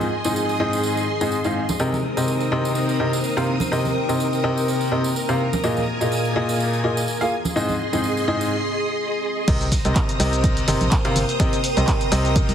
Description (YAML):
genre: piano house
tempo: 125 BPM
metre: 4/4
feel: swing 55% on 16ths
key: C minor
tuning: A4 = 440 Hz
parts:
  - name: string machine, violins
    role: sustained chords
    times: 0.0-12.5 s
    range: C4 to Eb6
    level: -27 LUFS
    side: right 1 dB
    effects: ensemble chorus, sidechain pumping
  - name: clear grand piano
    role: riff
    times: 0.0-12.5 s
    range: Ab2 to F5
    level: -22 LUFS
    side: left 1 dB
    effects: sidechain pumping, ping-pong delay
  - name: congas and tambourine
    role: percussion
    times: 0.0-8.5 s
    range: none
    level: -30 LUFS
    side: right 3 dB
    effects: none
  - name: deep dark ambient pad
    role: texture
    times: 0.0-12.5 s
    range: Eb4 to Ab5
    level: -29 LUFS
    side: equal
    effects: chorus, built-in reverb, sidechain pumping
  - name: organ-like FM bass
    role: bass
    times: 9.5-12.5 s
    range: G1 to C2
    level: -22 LUFS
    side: equal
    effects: sidechain pumping
  - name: electronic kick drum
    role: drums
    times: 9.5-12.5 s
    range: none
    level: -21 LUFS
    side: equal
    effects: none
  - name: punchy analog drum machine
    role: drums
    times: 9.5-12.5 s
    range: crash cymbal, handclaps, hi-hat, shaker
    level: -27 LUFS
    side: right 2 dB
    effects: none
room: light reverb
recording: heavily compressed radio sound, multiband compression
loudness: -19 LUFS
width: side -9 dB against mid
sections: 0.0-9.5 A section; 9.5-12.5 B section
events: break 8.5-9.5; drop 9.5-12.5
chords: 0.0 Ab; 1.8 Cm7; 5.6 Bb7sus4; 7.3 Ab; 9.5 Cm7